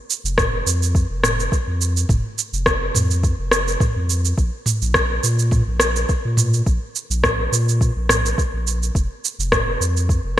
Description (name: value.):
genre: organic downtempo.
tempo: 105 BPM.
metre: 4/4.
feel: swing 54% on 16ths.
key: unclear.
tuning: A4 = 440 Hz.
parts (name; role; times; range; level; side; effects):
organic electronic drum kit; drums; 0.1-10.2 s; rim click, shaker, toms; -20 LUFS; right 1 dB; gated reverb.
warm sub bass; bass; 0.2-10.4 s; F1 to Bb2; -20 LUFS; equal; none.
electronic kick drum; drums; 0.4-10.2 s; none; -20 LUFS; equal; none.
room: light reverb.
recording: bright 1980s-style digital production.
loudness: -17 LUFS.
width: side -12 dB against mid.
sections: 0.0-10.4 A section.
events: none.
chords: none.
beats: 0.38 0.95 1.52 | 2.10 2.67 3.24 3.81 | 4.38 4.95 5.52 6.09 | 6.67 7.24 7.81 8.38 | 8.95 9.52 10.10.